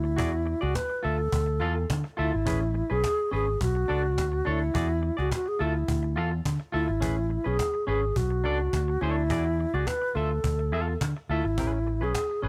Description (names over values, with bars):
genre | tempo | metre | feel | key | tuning
disco | 105 BPM | 4/4 | straight | A major | A4 = 440 Hz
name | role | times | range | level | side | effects
mellow alto flute | melody | 0.0-12.5 s | E4 to B4 | -31 LUFS | equal | none
semi-hollow electric guitar | accompaniment | 0.0-12.5 s | C#4 to F5 | -36 LUFS | equal | none
fingered electric bass | bass | 0.0-12.5 s | G#1 to D3 | -30 LUFS | equal | none
cajon | drums | 0.2-12.3 s | none | -34 LUFS | equal | none
room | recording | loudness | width
little or no reverb | none | -27 LUFS | mono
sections
0.0-12.5 A section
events
none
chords
0.2 E9; 1.0 Dmadd9; 2.5 Amaj9; 3.6 Bm9; 4.7 E9; 5.6 Dmadd9; 7.0 Amaj9; 8.2 Bm9; 9.3 E9; 10.2 Dmadd9; 11.6 Amaj9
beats
| 0.19 0.76 1.33 1.90 | 2.47 3.04 3.61 4.18 | 4.75 5.32 5.89 6.46 | 7.02 7.59 8.16 8.73 | 9.30 9.87 10.44 11.01 | 11.58 12.14